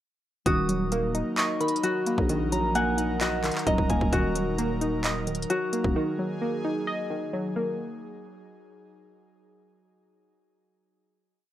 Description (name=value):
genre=hip hop, trap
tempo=131 BPM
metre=4/4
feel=half-time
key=Eb minor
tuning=A4 = 440 Hz
part: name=soft synth bell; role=second line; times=0.5-4.1 s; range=Gb5 to Eb6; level=-33 LUFS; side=right 1 dB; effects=chorus, tape echo
part: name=warbly dusty pluck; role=accompaniment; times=0.5-7.8 s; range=Eb3 to Eb5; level=-29 LUFS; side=right 1 dB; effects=chorus, low-pass filter
part: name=airy breathy pad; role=sustained chords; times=0.5-7.8 s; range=Gb3 to Bb4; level=-35 LUFS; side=right 1 dB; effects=chorus
part: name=concert harp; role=arpeggios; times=0.5-7.9 s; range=Gb4 to Gb5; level=-31 LUFS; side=left 2 dB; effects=low-pass filter, tape echo
part: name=growling 808-style bass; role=bass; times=0.5-6.0 s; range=Eb1 to Bb1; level=-30 LUFS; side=equal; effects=none
part: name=trap drum kit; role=drums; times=0.5-6.0 s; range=handclaps, hi-hat, kick drum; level=-29 LUFS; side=equal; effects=none
room=digital ambience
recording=dry, gritty hardware recording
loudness=-24 LUFS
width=side -12 dB against mid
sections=0.5-7.8 hook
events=none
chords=0.5 Ebm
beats=| 0.46 0.92 1.38 1.83 | 2.29 2.75 3.21 3.67 | 4.12 4.58 5.04 5.50 | 5.96 6.42 6.87 7.33